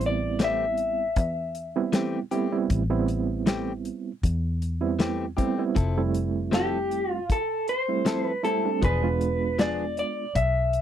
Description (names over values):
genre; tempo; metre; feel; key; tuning
straight-eighth soul blues; 78 BPM; 4/4; swing 55% on 16ths; A minor; A4 = 442 Hz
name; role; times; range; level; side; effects
electric guitar through a small old amp; melody; 0.0-1.9, 6.5-10.8 s; G4 to E5; -26 LUFS; left 1 dB; none
barky reed electric piano; accompaniment; 0.0-10.2 s; G3 to F4; -28 LUFS; right 7 dB; overdrive, medium tremolo
vintage muted fingered electric bass; bass; 0.0-10.8 s; E1 to E2; -29 LUFS; left 1 dB; none
warm soul drum kit; drums; 0.0-10.8 s; hi-hat, kick drum, snare drum; -26 LUFS; left 1 dB; none
direct-recorded clean electric guitar; stabs; 0.4-9.8 s; E3 to A4; -29 LUFS; left 6 dB; none
room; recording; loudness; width
little or no reverb; dry, close 1970s-style studio recording; -24 LUFS; side -10 dB against mid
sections
0.0-10.8 A section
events
none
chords
0.0 Am7; 5.8 Fmaj7; 8.8 E7b9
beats
0.40 1.17 1.93 | 2.70 3.47 4.24 5.00 | 5.77 6.54 7.30 8.07 | 8.83 9.60 10.36